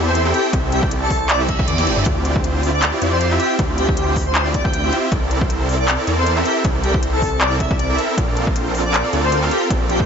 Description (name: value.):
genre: future bass.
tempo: 157 BPM.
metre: 4/4.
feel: swing 55% on 16ths, half-time.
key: D minor.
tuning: A4 = 438 Hz.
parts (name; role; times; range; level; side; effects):
supersaw chords; riff; 0.0-10.1 s; C4 to G5; -21 LUFS; right 1 dB; sidechain pumping.
wide detuned saw bass; bass; 0.0-10.1 s; G1 to F2; -21 LUFS; equal; chorus, sidechain pumping.
airy dreamy lead; melody; 0.1-10.0 s; G4 to G5; -23 LUFS; left 1 dB; chorus, sidechain pumping, ping-pong delay.
trap drum kit; drums; 0.1-10.0 s; handclaps, hi-hat, snare drum, toms; -23 LUFS; left 1 dB; studio reverb.
electronic kick drum; drums; 0.5-10.1 s; none; -21 LUFS; equal; overdrive, studio reverb.
reverse cymbal; sound effects; 1.5-2.1 s; none; -27 LUFS; right 6 dB; none.
room: little or no reverb.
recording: nothing above 7.8 kHz.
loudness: -15 LUFS.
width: side -7 dB against mid.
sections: 0.0-10.1 A section.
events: reverse cymbal 1.5-2.1; drum fill 1.7-2.1.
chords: 0.0 Am7/C; 2.1 Dm11; 5.1 C13; 8.2 Bbmaj9.